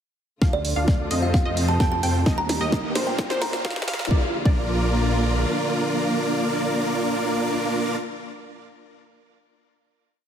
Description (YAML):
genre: EDM, festival progressive house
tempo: 130 BPM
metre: 4/4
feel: straight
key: Bb major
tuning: A4 = 441 Hz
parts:
  - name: clear symphonic string section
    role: sustained chords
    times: 0.4-7.6 s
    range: C3 to G4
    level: -32 LUFS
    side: left 1 dB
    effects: sidechain pumping
  - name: wide unison pluck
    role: arpeggios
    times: 0.4-8.0 s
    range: C5 to G5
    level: -31 LUFS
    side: equal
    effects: cassette tape, sidechain pumping, ping-pong delay
  - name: big supersaw lead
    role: riff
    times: 0.4-8.0 s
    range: Bb3 to G5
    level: -25 LUFS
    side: right 1 dB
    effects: sidechain pumping, low-pass filter, ping-pong delay
  - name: wide detuned saw bass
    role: bass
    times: 0.4-5.5 s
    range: Bb1 to F2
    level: -25 LUFS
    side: equal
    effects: chorus, sidechain pumping
  - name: electronic kick drum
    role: drums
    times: 0.4-4.6 s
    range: none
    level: -21 LUFS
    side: equal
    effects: none
  - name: house drum kit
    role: drums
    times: 0.4-4.1 s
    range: hi-hat, snare drum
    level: -29 LUFS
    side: equal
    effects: none
  - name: riser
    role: sound effects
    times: 2.2-4.1 s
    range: none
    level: -34 LUFS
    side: right 1 dB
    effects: none
  - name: kalimba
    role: melody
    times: 0.5-4.1 s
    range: D5 to Bb5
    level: -29 LUFS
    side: right 3 dB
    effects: ping-pong delay
room: moderate lush hall reverb, RT60 1.9 s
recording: heavily compressed radio sound, high-pass filter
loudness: -20 LUFS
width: side -8 dB against mid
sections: 0.4-4.1 build; 4.1-7.8 final chord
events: build-up 0.4-4.1; drum fill 0.4-4.1; filter sweep on supersaw synth 0.4-4.1; filter sweep 0.4-4.1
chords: 0.4 Dm; 1.3 F; 2.3 Eb; 3.2 Bb